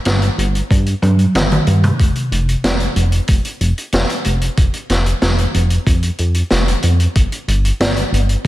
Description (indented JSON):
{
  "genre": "synthwave",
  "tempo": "93 BPM",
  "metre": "4/4",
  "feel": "straight",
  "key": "unclear",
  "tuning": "A4 = 438 Hz",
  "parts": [
    { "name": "chorused synth bass", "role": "bass", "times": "0.1-8.5 s", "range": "F1 to G2", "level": "-15 LUFS", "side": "equal", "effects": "sidechain pumping" },
    { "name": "street-band drum kit", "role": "drums", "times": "0.1-8.4 s", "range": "hi-hat, snare drum, toms", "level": "-18 LUFS", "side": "equal", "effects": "none" },
    { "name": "electronic kick drum", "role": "drums", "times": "0.7-8.5 s", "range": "none", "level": "-14 LUFS", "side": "equal", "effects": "none" }
  ],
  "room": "light reverb",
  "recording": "none",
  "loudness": "-13 LUFS",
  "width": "side -16 dB against mid",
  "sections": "0.0-8.5 A section",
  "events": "drum fill 1.0-2.0",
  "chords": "none",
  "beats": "0.06 0.71 1.35 | 2.00 2.64 3.29 3.93 | 4.58 5.22 5.87 6.51 | 7.16 7.80 8.45"
}